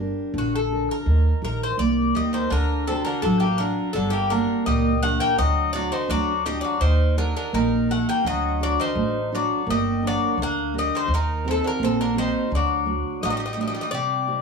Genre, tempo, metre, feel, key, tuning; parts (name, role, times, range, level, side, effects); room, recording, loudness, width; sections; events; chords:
greek folk, Greek bouzouki band; 84 BPM; 2/4; straight; D phrygian dominant; A4 = 437 Hz
fingerpicked steel-string acoustic guitar; accompaniment; 0.0-14.4 s; Bb2 to Bb4; -25 LUFS; right 2 dB
upright bass; bass; 0.0-13.7 s; G1 to Eb2; -25 LUFS; equal
Greek bouzouki; melody; 0.4-14.4 s; F#4 to G5; -25 LUFS; left 4 dB; plate reverb
Greek bouzouki; second line; 2.1-14.4 s; C3 to Bb3; -30 LUFS; right 1 dB
moderate small room ambience, RT60 0.5 s; small room ambience; -20 LUFS; side -5 dB against mid
0.0-2.5 A section; 2.5-13.9 B section
0.0 Gm; 1.1 Eb; 2.5 D; 4.0 Gm; 5.4 D; 6.8 Eb; 8.3 D; 9.7 Gm; 11.1 Eb6; 12.5 D